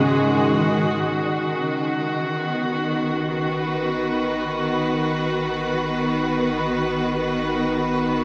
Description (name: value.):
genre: ambient.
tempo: free time.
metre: none.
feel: none.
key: G# minor.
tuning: A4 = 441 Hz.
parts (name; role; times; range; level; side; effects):
rich studio string section; sustained chords; 0.0-8.2 s; G#2 to B4; -23 LUFS; equal; low-pass filter.
felt-muted upright piano; arpeggios; 0.0-3.5 s; C#3 to D#5; -28 LUFS; equal; diffuse ambient delay.
pedal harmonium; drone; 0.0-1.1 s; G#3; -32 LUFS; equal; none.
wind-like tuned noise texture; texture; 0.0-1.0 s; D#6; -41 LUFS; equal; none.
deep rumbling drone; bass; 2.8-8.2 s; G#1; -46 LUFS; equal; built-in reverb.
room: wet huge ambient reverb, RT60 8.2 s.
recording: none.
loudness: -23 LUFS.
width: mono.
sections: 1.0-8.2 A section.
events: fade-in on synth drone 1.0-8.2.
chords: 0.0 D#m/G#; 1.0 G#m7.